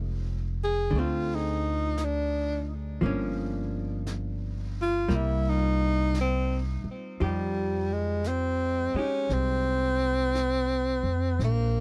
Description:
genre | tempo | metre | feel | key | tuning
jazz ballad | 57 BPM | 4/4 | swing 66% on 8ths | F minor | A4 = 437 Hz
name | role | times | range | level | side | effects
archtop guitar, miked and amplified | accompaniment | 0.0-11.4 s | D3 to G4 | -36 LUFS | equal | none
upright bass | bass | 0.0-11.8 s | F1 to F2 | -32 LUFS | equal | none
clear tenor saxophone | melody | 0.6-11.8 s | G3 to Ab4 | -31 LUFS | equal | tape echo
jazz brush drum kit | drums | 0.9-11.8 s | brushed snare drum, hi-hat, snare drum | -50 LUFS | equal | none
room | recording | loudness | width
little or no reverb | dry, close 1970s-style studio recording | -28 LUFS | mono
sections
0.0-7.2 A section; 7.2-11.8 B section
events
tenor saxophone solo 0.0-7.2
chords
0.0 Fm7; 0.9 D5; 3.0 Gm7b5; 5.1 C5; 7.2 Fm9

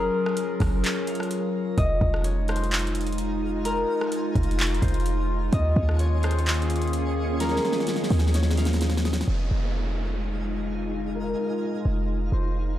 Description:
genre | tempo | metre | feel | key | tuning
hip hop, atmospheric cloud-rap | 128 BPM | 4/4 | half-time | F phrygian | A4 = 440 Hz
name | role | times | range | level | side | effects
concert harp | melody | 0.0-12.8 s | Bb4 to F5 | -31 LUFS | left 2 dB | low-pass filter, tape echo
warbly tape-like pad | sustained chords | 0.0-12.8 s | Eb3 to Bb4 | -29 LUFS | left 2 dB | chorus, built-in reverb, sidechain pumping, low-pass filter
warm 808-style bass | bass | 0.0-12.8 s | F1 to Eb2 | -25 LUFS | equal | none
smooth R&B drum kit | drums | 0.3-9.3 s | handclaps, hi-hat, kick drum, rim click, snare drum | -28 LUFS | equal | none
twinkling granular texture | texture | 2.5-12.8 s | Db4 to F5 | -38 LUFS | right 2 dB | built-in reverb
downlifter | sound effects | 9.3-12.8 s | none | -39 LUFS | right 1 dB | none
room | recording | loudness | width
digital ambience | dry, gritty hardware recording | -22 LUFS | side -12 dB against mid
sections
0.0-9.3 A section; 9.3-12.8 B section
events
break 0.8-1.8; drum fill 7.4-9.3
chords
0.0 Gbmaj7; 1.8 Fm7; 5.5 Eb7sus4; 9.3 Fm7

